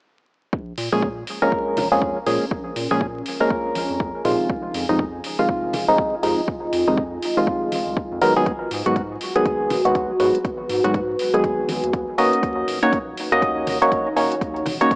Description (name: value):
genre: deep house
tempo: 121 BPM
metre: 4/4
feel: swing 60% on 16ths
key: Bb minor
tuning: A4 = 440 Hz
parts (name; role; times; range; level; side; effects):
- round analog bass; bass; 0.5-15.0 s; Eb1 to Bb2; -33 LUFS; equal; sidechain pumping
- electronic kick drum; drums; 0.5-15.0 s; none; -26 LUFS; equal; overdrive
- deep dark ambient pad; texture; 2.2-15.0 s; Db4 to Ab5; -26 LUFS; equal; chorus, built-in reverb, sidechain pumping
- electronic hi-hat; drums; 0.8-15.0 s; none; -32 LUFS; equal; overdrive
- percussive organ stab; stabs; 0.9-15.0 s; C3 to Eb5; -19 LUFS; equal; chorus, phaser, sidechain pumping, analog delay
- congas; percussion; 1.8-14.8 s; none; -29 LUFS; equal; none
room: light reverb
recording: vinyl crackle, small speaker sound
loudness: -18 LUFS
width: side -29 dB against mid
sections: 0.5-15.0 A section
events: none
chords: 0.5 Bbm7; 4.5 Fm7; 8.2 Abm7; 12.2 Ebm7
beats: | 0.53 1.02 1.52 2.02 | 2.51 3.01 3.50 4.00 | 4.50 4.99 5.49 5.98 | 6.48 6.98 7.47 7.97 | 8.46 8.96 9.46 9.95 | 10.45 10.94 11.44 11.94 | 12.43 12.93 13.42 13.92 | 14.41 14.91